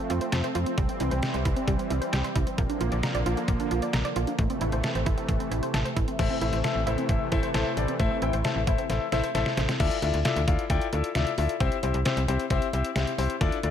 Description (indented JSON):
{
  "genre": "synth-pop",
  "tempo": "133 BPM",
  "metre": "4/4",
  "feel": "straight",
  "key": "unclear",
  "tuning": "A4 = 442 Hz",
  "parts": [
    { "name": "lush unison pad", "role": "sustained chords", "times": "0.0-9.8 s", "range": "C3 to C4", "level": "-32 LUFS", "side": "right 1 dB", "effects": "chorus" },
    { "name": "wide unison pluck", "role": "arpeggios", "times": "0.0-9.8 s", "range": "G3 to Bb5", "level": "-32 LUFS", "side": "right 3 dB", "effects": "auto-pan, tape echo" },
    { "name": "slap-like FM bass", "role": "bass", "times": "0.1-13.7 s", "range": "A1 to F2", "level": "-28 LUFS", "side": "equal", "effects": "none" },
    { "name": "detuned 8-bit digital drum machine", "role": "drums", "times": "0.1-13.7 s", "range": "crash cymbal, hi-hat, kick drum, snare drum", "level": "-29 LUFS", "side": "equal", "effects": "none" },
    { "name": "warm concert grand piano", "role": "accompaniment", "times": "6.2-13.7 s", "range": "C4 to G5", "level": "-28 LUFS", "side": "left 7 dB", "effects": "none" }
  ],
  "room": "light reverb",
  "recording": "none",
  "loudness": "-24 LUFS",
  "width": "side -9 dB against mid",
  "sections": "0.0-6.2 A section; 6.2-9.8 B section; 9.8-13.7 C section",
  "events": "drum fill 8.9-9.8",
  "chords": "0.0 F; 0.8 C; 2.6 Bb; 4.4 Am; 9.8 Dmadd9; 11.6 C"
}